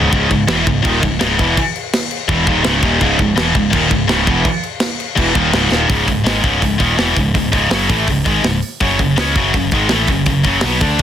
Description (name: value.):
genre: heavy metal.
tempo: 166 BPM.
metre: 4/4.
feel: straight.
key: C# minor.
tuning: A4 = 440 Hz.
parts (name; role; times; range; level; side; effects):
crunchy overdriven guitar; riff; 0.0-5.9 s; C#2 to E3; -21 LUFS; right 2 dB; none.
heavy high-gain guitar; riff; 0.0-11.0 s; C#2 to D4; -16 LUFS; left 7 dB; distortion.
heavy high-gain guitar; riff; 0.0-11.0 s; C#2 to D4; -19 LUFS; right 11 dB; distortion.
picked electric bass; bass; 0.0-11.0 s; C#1 to D2; -21 LUFS; equal; none.
tight metal drum kit; drums; 0.1-11.0 s; crash cymbal, hi-hat, kick drum, snare drum; -18 LUFS; equal; none.
room: studio ambience.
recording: dense, heavily limited modern master.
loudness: -12 LUFS.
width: side -10 dB against mid.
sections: 0.0-5.9 A section; 5.9-11.0 B section.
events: drum fill 5.7.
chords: 0.0 C#m; 8.8 F#5.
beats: | 0.12 0.48 0.84 1.20 | 1.56 1.92 2.28 2.64 | 3.00 3.36 3.72 4.09 | 4.45 4.81 5.17 5.53 | 5.90 6.26 6.62 6.99 | 7.35 7.71 8.08 8.44 | 8.81 9.17 9.54 9.90 | 10.27 10.63 11.00.